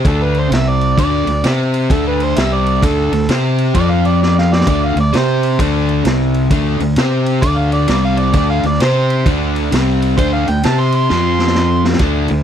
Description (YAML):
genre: blues rock power trio and southern rock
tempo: 131 BPM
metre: 4/4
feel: swing 64% on 8ths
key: unclear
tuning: A4 = 439 Hz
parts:
  - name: overdriven semi-hollow guitar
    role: riff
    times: 0.0-12.4 s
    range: C3 to C5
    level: -16 LUFS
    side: left 1 dB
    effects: none
  - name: fuzz fingered electric bass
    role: bass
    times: 0.0-12.4 s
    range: C2 to C3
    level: -17 LUFS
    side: equal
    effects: overdrive
  - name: raw garage drum kit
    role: drums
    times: 0.0-12.4 s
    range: kick drum, ride cymbal, snare drum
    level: -20 LUFS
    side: equal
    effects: none
  - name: overdriven harmonica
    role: melody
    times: 0.1-11.8 s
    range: A4 to C6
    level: -19 LUFS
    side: right 3 dB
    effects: slapback echo
room: little or no reverb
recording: dry, close 1970s-style studio recording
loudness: -12 LUFS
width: side -9 dB against mid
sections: 0.0-12.4 A section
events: drum fill 4.2-4.7, 11.1-12.0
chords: 0.1 D5; 0.5 C5; 1.0 D5; 1.4 C5; 1.9 D5; 2.4 C5; 2.8 D5; 3.3 C5; 3.8 F5; 4.7 D5; 5.1 C5; 5.6 D5; 6.1 C5; 6.5 D5; 7.0 C5; 7.4 D5; 7.9 C5; 8.3 D5; 8.8 C5; 9.3 D5; 9.7 C5; 10.2 D5; 10.6 C5; 11.1 F5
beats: 0.06 0.52 | 0.98 1.44 1.91 2.37 | 2.83 3.29 3.75 4.21 | 4.67 5.13 5.59 6.05 | 6.51 6.97 7.43 7.89 | 8.35 8.81 9.26 9.72 | 10.18 10.64 11.10 11.55 | 12.01